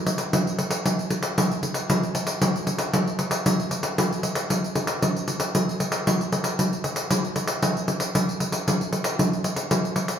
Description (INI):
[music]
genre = samba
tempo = 115 BPM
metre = 4/4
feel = straight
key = none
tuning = none
[part]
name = pandeiro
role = percussion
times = 0.1-10.2 s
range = none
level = -22 LUFS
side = equal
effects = none
[sound]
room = wet stone room reverb, RT60 1.2 s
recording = band playing live in one room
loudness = -22 LUFS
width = side -8 dB against mid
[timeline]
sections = 0.0-9.2 A section; 9.2-10.2 B section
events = none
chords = none